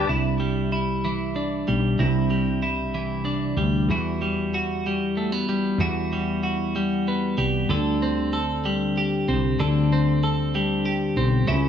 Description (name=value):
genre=six-eight pop ballad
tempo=63 BPM (dotted quarters)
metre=6/8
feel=straight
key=unclear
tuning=A4 = 440 Hz
part: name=twelve-string electric guitar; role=accompaniment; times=0.0-11.7 s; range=C3 to A4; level=-23 LUFS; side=right 1 dB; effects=spring reverb
part: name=woody fretless electric bass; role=bass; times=0.0-11.7 s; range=B1 to E2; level=-25 LUFS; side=left 1 dB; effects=none
room=light reverb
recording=none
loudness=-21 LUFS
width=side -8 dB against mid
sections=0.1-11.7 A section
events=none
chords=0.1 Cadd9; 3.9 Emadd9; 7.7 D7sus4